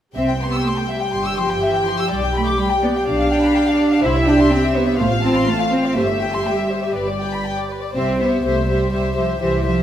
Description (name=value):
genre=quick classical-period movement for string orchestra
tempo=124 BPM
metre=4/4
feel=straight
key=C major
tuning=A4 = 440 Hz
part: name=warm symphonic violin section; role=melody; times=0.2-9.8 s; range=D5 to G5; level=-26 LUFS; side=left 4 dB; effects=none
part: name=warm symphonic violin section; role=second line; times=0.2-9.8 s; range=B4 to E6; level=-23 LUFS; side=left 3 dB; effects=none
part: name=dark symphonic viola section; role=accompaniment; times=0.2-9.8 s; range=F4 to G4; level=-24 LUFS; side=right 1 dB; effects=none
part: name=dark symphonic double bass section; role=bass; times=0.2-9.8 s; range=G1 to C2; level=-24 LUFS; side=right 2 dB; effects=none
part: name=warm symphonic cello section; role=bass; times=0.2-9.8 s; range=E3 to E4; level=-20 LUFS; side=right 2 dB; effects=none
room=wet recital hall reverb, RT60 1.7 s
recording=none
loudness=-16 LUFS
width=side -10 dB against mid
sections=0.2-9.8 A section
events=none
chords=0.2 C; 2.1 G/B; 3.1 G7/B; 4.0 C; 5.0 F/A; 6.0 C/G; 7.0 G; 8.0 C